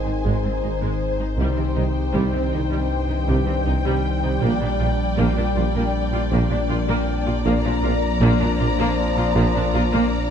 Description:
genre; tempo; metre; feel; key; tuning
cinematic, hybrid orchestral and electronic film score; 79 BPM; 4/4; straight; C minor; A4 = 440 Hz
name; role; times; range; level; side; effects
warm studio violin section; melody; 0.0-10.3 s; G5 to Bb5; -30 LUFS; left 5 dB; none
warm symphonic violin section; second line; 0.0-10.3 s; C5 to D5; -30 LUFS; left 4 dB; none
mellow French horn section; sustained chords; 0.0-10.3 s; Bb3 to Eb4; -29 LUFS; left 5 dB; none
mellow trombone section; sustained chords; 0.0-10.3 s; F2 to G3; -29 LUFS; right 4 dB; none
phased analog pad; sustained chords; 0.0-10.3 s; Eb3 to D5; -30 LUFS; left 1 dB; phaser, chorus
sub bass with octave; bass; 0.0-10.3 s; Ab1 to C2; -25 LUFS; left 1 dB; none
clear symphonic viola section; accompaniment; 0.1-10.1 s; G3 to F4; -28 LUFS; equal; none
rich symphonic cello section; bass; 0.1-10.0 s; Ab2 to C3; -28 LUFS; right 2 dB; none
rich symphonic double bass section; bass; 0.2-9.8 s; Ab1 to C2; -25 LUFS; right 2 dB; none
warm tuba; bass; 0.2-9.8 s; Ab1 to C2; -29 LUFS; right 2 dB; none
room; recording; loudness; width
light reverb; dark, warm production; -18 LUFS; side -8 dB against mid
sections
0.0-10.3 A section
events
none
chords
0.0 Ab; 1.4 Cm; 4.4 Gm7/Bb; 7.5 Bb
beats
0.62 | 1.38 2.14 2.90 3.66 | 4.42 5.18 5.94 6.70 | 7.46 8.22 8.98 9.74

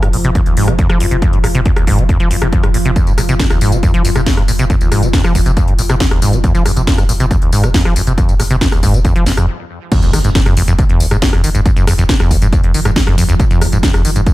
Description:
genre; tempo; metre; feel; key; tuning
driving peak-time techno; 138 BPM; 4/4; straight; F phrygian; A4 = 435 Hz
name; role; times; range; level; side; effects
acid bass, saw; riff; 0.0-14.3 s; Eb2 to F3; -15 LUFS; equal; sidechain pumping, ping-pong delay
saturated sub bass; bass; 0.0-14.3 s; F1; -17 LUFS; equal; overdrive, sidechain pumping, low-pass filter
deep dark ambient pad; drone; 0.0-14.3 s; F3 to F4; -24 LUFS; equal; chorus, built-in reverb, sidechain pumping
techno drum kit; drums; 0.0-14.3 s; crash cymbal, hi-hat, rim click, snare drum, tambourine; -19 LUFS; left 1 dB; overdrive, sidechain pumping on hats, small room ambience, sidechain pumping on perc, sidechain pumping on cymbals
electronic kick drum; drums; 0.4-14.3 s; none; -13 LUFS; equal; overdrive, small room ambience
impact; sound effects; 9.9-11.7 s; none; -21 LUFS; equal; none
room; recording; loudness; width
little or no reverb; none; -10 LUFS; side -17 dB against mid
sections
0.0-9.9 A section; 9.9-14.3 B section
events
filter sweep on acid bass 0.0-9.9; stop 9.5-9.9; drop 9.9-14.3; impact 9.9-11.7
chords
0.0 Fm; 9.9 N.C.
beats
0.35 0.79 | 1.22 1.66 2.09 2.52 | 2.96 3.40 3.83 4.26 | 4.70 5.13 5.57 6.00 | 6.44 6.87 7.31 7.74 | 8.18 8.61 9.05 9.48 | 9.92 10.35 10.79 11.22 | 11.66 12.09 12.53 12.96 | 13.39 13.83 14.26

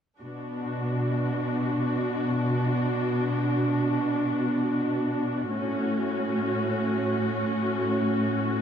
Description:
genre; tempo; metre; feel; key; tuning
cinematic; free time; none; none; B minor; A4 = 439 Hz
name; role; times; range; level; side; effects
rich symphonic viola section; accompaniment; 0.2-8.6 s; C#4 to F#4; -27 LUFS; equal; none
warm symphonic cello section; bass; 0.2-8.6 s; A2 to B2; -27 LUFS; equal; none
room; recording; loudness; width
moderate concert hall reverb, RT60 2.4 s; none; -24 LUFS; side -8 dB against mid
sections
0.2-8.6 A section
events
none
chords
0.2 Bm; 5.5 F#m/A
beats
free time

